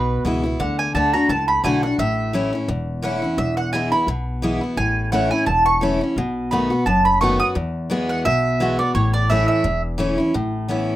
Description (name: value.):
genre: bluegrass.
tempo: 172 BPM.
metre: 4/4.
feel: swing 54% on 8ths.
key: A major.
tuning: A4 = 438 Hz.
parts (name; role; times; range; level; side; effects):
picked steel-string acoustic guitar; accompaniment; 0.0-11.0 s; E2 to F#4; -21 LUFS; left 1 dB; none.
mandolin; stabs; 0.0-9.8 s; B4 to D#6; -20 LUFS; right 2 dB; none.
upright bass; bass; 0.0-10.9 s; E1 to E2; -26 LUFS; equal; none.
room: light reverb.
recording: rough home demo mix.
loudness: -17 LUFS.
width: side -14 dB against mid.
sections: 0.0-10.3 A section.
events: mandolin solo 0.0-10.3.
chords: 0.0 E; 0.6 D; 2.0 A; 3.4 E; 4.8 A; 6.2 B7; 7.6 Eadd9; 9.0 A; 10.3 Aadd9.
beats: 0.25 | 0.60 0.95 1.29 1.64 | 1.99 2.34 2.69 3.04 | 3.38 3.73 4.08 4.43 | 4.78 5.13 5.47 5.82 | 6.17 6.52 6.87 7.21 | 7.56 7.91 8.26 8.61 | 8.95 9.30 9.65 10.00 | 10.34 10.69.